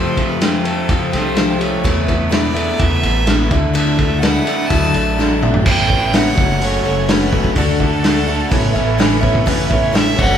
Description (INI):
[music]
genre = folk rock and heartland rock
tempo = 126 BPM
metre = 4/4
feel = straight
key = A mixolydian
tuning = A4 = 441 Hz
[part]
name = rich fiddle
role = melody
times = 0.0-10.4 s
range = A4 to A5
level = -22 LUFS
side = right 1 dB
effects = none
[part]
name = picked plugged-in twelve-string acoustic guitar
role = accompaniment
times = 0.0-10.4 s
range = E2 to G4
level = -21 LUFS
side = left 2 dB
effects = none
[part]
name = bright tonewheel organ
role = sustained chords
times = 0.0-10.4 s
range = A3 to B4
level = -30 LUFS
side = right 1 dB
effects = none
[part]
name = crunchy overdriven guitar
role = riff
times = 0.0-10.4 s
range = E2 to G4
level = -21 LUFS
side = right 1 dB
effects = none
[part]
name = upright bass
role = bass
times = 0.0-10.4 s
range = F#1 to F2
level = -20 LUFS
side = equal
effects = none
[part]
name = vintage drum kit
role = drums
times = 0.2-10.3 s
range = crash cymbal, hi-hat, kick drum, ride cymbal, snare drum, toms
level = -17 LUFS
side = equal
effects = none
[sound]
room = light reverb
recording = band playing live in one room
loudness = -13 LUFS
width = side -9 dB against mid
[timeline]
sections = 0.0-5.7 A section; 5.7-10.4 B section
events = drum fill 5.2-5.7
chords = 0.0 Fadd9; 1.8 Esus4; 3.5 Dadd9; 5.7 Aadd9; 6.4 F#m; 7.6 D; 8.5 Aadd9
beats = 0.41 0.89 1.36 | 1.84 2.32 2.80 3.27 | 3.75 4.23 4.71 5.18 | 5.66 6.14 6.61 7.09 | 7.57 8.04 8.52 9.00 | 9.47 9.95